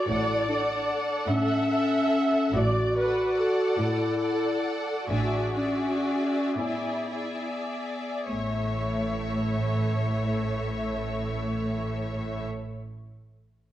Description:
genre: classical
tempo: 33-50 BPM (dotted quarters)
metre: 6/8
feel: rubato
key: A major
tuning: A4 = 440 Hz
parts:
  - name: clear symphonic violin section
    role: melody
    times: 0.0-12.5 s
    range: E5 to F#5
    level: -37 LUFS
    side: left 2 dB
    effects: none
  - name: clear symphonic violin section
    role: second line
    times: 0.0-12.5 s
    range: G#4 to D5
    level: -34 LUFS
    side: left 2 dB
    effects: none
  - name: dark clarinet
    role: second line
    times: 0.0-12.5 s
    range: A3 to F#4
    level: -29 LUFS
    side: left 1 dB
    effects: none
  - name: warm symphonic viola section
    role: accompaniment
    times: 0.0-12.5 s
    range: A3 to E5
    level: -30 LUFS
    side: right 1 dB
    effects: none
  - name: clear symphonic cello section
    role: bass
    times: 0.1-12.5 s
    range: A2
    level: -33 LUFS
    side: right 1 dB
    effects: none
  - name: rich symphonic double bass section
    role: bass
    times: 0.1-12.5 s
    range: A1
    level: -32 LUFS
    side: right 2 dB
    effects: none
room: wet recital hall reverb, RT60 1.5 s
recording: worn, warbling old tape, cassette tape, warbly pitch drift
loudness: -25 LUFS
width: side -13 dB against mid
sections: 0.0-8.3 A section; 8.3-11.7 B section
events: slowing down 1.3-8.3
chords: 0.1 D/A; 5.1 E7/A; 8.3 A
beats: | 0.08 1.28 | 2.55 3.79 | 5.09 6.57 | 8.29 9.99

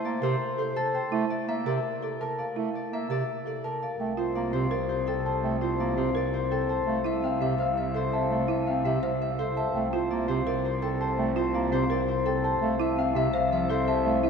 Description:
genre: classical, minimalist pattern music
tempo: 167 BPM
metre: 4/4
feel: straight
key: unclear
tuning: A4 = 440 Hz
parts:
  - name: concert harp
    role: melody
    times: 0.0-14.3 s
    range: A4 to F5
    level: -29 LUFS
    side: left 6 dB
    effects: none
  - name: warm bass clarinet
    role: accompaniment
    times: 0.0-14.2 s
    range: C3 to C4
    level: -32 LUFS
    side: right 3 dB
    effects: none
  - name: large celesta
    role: arpeggios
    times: 0.0-14.3 s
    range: E5 to A5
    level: -35 LUFS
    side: right 2 dB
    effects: none
  - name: folk marimba with medium hard mallets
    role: arpeggios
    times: 0.2-14.3 s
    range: C4 to C5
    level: -32 LUFS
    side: right 6 dB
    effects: none
  - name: warm cello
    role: bass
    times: 4.0-14.3 s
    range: C2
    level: -31 LUFS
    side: right 1 dB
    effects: none
room: wet church reverb, RT60 3.2 s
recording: minimal, uncompressed stereo recording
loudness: -25 LUFS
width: side -6 dB against mid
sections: 0.0-4.0 A section; 4.0-14.3 B section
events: none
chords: 0.0 C13; 1.1 Bbmaj9/C; 4.0 Gm9/C; 6.9 F6/C; 9.7 Gm9/C; 12.6 F6/C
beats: 0.05 0.41 0.76 | 1.12 1.48 1.84 2.20 | 2.56 2.92 3.28 3.64 | 4.00 4.36 4.72 5.08 | 5.43 5.79 6.15 6.51 | 6.87 7.23 7.59 7.95 | 8.31 8.67 9.03 9.39 | 9.75 10.11 10.46 10.82 | 11.18 11.54 11.90 12.26 | 12.62 12.98 13.34 13.70 | 14.06

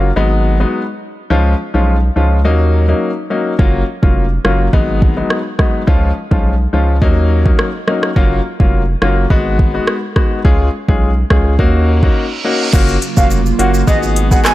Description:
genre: dancehall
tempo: 105 BPM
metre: 4/4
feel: straight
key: F# major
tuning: A4 = 440 Hz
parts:
  - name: clear grand piano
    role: accompaniment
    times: 0.0-14.5 s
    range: E#3 to G#4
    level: -17 LUFS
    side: left 2 dB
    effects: none
  - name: saturated sub bass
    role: bass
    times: 0.0-14.4 s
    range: E#1 to D#2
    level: -14 LUFS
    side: equal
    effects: none
  - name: afro-pop drum kit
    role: drums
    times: 3.6-14.5 s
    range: crash cymbal, handclaps, hi-hat, kick drum, rim click, shaker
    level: -13 LUFS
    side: equal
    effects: none
  - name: reverse cymbal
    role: sound effects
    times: 11.9-12.7 s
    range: none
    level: -23 LUFS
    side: right 5 dB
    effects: none
  - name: airy breathy pad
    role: sustained chords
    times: 12.7-14.5 s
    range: C#3 to F#4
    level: -20 LUFS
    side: right 5 dB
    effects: chorus, sidechain pumping
  - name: maracas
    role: percussion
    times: 12.7-14.5 s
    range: none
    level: -30 LUFS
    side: right 10 dB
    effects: none
  - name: bright reedy baroque flute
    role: melody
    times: 13.2-14.5 s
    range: D#5 to G#5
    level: -18 LUFS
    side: right 2 dB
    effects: tape echo
room: little or no reverb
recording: dark, warm production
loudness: -11 LUFS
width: side -16 dB against mid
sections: 0.0-12.7 A section; 12.7-14.5 B section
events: reverse cymbal 11.9-12.7; break 12.2-12.7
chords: 0.2 G#m7; 1.3 C#; 2.4 D#m7; 3.6 F#maj7; 4.7 G#m7; 5.9 C#; 7.0 D#m7; 8.2 F#maj7; 9.3 G#m7; 10.4 C#; 11.6 D#m7; 12.7 F#maj7; 13.9 G#m7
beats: 0.16 0.73 | 1.31 1.88 2.45 3.02 | 3.59 4.16 4.73 5.31 | 5.88 6.45 7.02 7.59 | 8.16 8.73 9.31 9.88 | 10.45 11.02 11.59 12.16 | 12.73 13.31 13.88 14.45

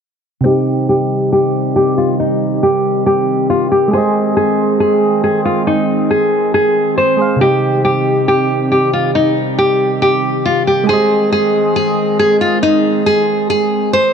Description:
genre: hip hop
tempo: 138 BPM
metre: 4/4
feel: half-time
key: C minor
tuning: A4 = 442 Hz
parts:
  - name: soft electric-piano-like synth keys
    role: accompaniment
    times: 0.4-14.1 s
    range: C3 to F5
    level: -18 LUFS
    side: right 3 dB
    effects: chorus, low-pass filter
  - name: nylon-string guitar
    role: melody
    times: 0.5-14.1 s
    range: Eb4 to C5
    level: -13 LUFS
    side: left 1 dB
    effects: low-pass filter
  - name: warbly tape-like pad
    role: sustained chords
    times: 0.8-14.1 s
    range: Eb3 to Ab4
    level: -18 LUFS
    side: equal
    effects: chorus, built-in reverb, low-pass filter
room: light reverb, studio reverb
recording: none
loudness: -11 LUFS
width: side -7 dB against mid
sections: 0.5-14.1 A section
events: filter sweep 0.5-14.1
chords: 0.5 Cm; 3.9 Ab; 7.4 Cm; 10.9 Ab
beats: | 0.46 0.89 1.32 1.76 | 2.19 2.63 3.06 3.50 | 3.93 4.37 4.80 5.24 | 5.67 6.11 6.54 6.98 | 7.41 7.85 8.28 8.72 | 9.15 9.59 10.02 10.46 | 10.89 11.32 11.76 12.19 | 12.63 13.06 13.50 13.93

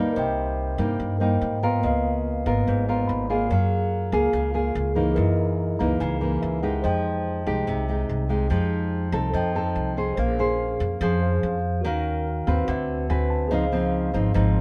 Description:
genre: bossa nova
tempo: 144 BPM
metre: 4/4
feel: straight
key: F minor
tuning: A4 = 441 Hz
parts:
  - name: mellow tine electric piano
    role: accompaniment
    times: 0.0-14.6 s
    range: Bb3 to Cb6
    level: -32 LUFS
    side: equal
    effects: none
  - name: nylon-string guitar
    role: accompaniment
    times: 0.0-14.6 s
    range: Gb2 to C5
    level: -27 LUFS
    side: equal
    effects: none
  - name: upright bass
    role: bass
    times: 0.0-14.6 s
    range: Ab1 to Ab2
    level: -28 LUFS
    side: equal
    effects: none
room: light reverb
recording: band playing live in one room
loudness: -24 LUFS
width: mono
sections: 0.0-10.2 A section; 10.2-14.6 B section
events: tine electric piano fill 2.9-3.5, 5.6-6.8, 12.3-13.5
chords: 0.2 Cm7; 1.8 Db13; 3.5 Gbmaj9; 5.2 Gb13; 6.8 Fm9; 9.3 F7; 10.2 Bbm9; 11.8 Ebm7; 12.7 D13; 13.5 Dbmaj9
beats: | 0.16 0.58 0.99 1.41 | 1.83 2.24 2.66 3.08 | 3.50 3.91 4.33 4.75 | 5.17 5.58 6.00 6.42 | 6.83 7.25 7.67 8.09 | 8.51 8.92 9.34 9.76 | 10.18 10.59 11.01 11.43 | 11.85 12.27 12.68 13.10 | 13.52 13.94 14.35

